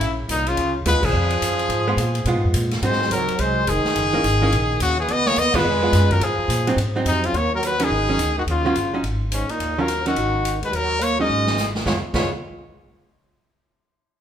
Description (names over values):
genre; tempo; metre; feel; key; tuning
jazz, small-group swing and bop; 213 BPM; 4/4; swing 62% on 8ths; Db mixolydian; A4 = 440 Hz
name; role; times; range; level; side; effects
brilliant trumpet; melody; 0.0-12.3 s; Db4 to Eb5; -22 LUFS; left 3 dB; none
trombone with plunger mute; second line; 0.0-12.3 s; Ab2 to Cb4; -26 LUFS; right 4 dB; none
upright bass; bass; 0.0-12.3 s; F1 to Cb3; -24 LUFS; equal; none
swinging big-band drum kit; drums; 0.0-12.2 s; crash cymbal, hi-hat, kick drum, ride cymbal, snare drum; -29 LUFS; equal; none
archtop guitar, miked and amplified; accompaniment; 0.9-12.3 s; Eb3 to F4; -25 LUFS; right 2 dB; none
room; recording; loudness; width
moderate large studio reverb, RT60 1.3 s; band playing live in one room; -18 LUFS; side -9 dB against mid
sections
0.0-7.3 A section; 7.3-11.9 B section; 11.9-13.0 C section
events
band accent 1.0, 5.5; drum fill 11.3-11.9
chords
0.0 Gb7 (rootless); 0.6 Db7; 2.8 Ab7; 4.0 Gb7; 5.1 Db7; 6.8 Ab7; 7.3 Ebm7; 7.9 Ab7sus4; 8.5 Ebm9; 9.0 Absus4; 9.6 Ebm9; 10.2 Ab5; 10.7 Ebm7; 11.3 Ab7sus4; 11.9 Db7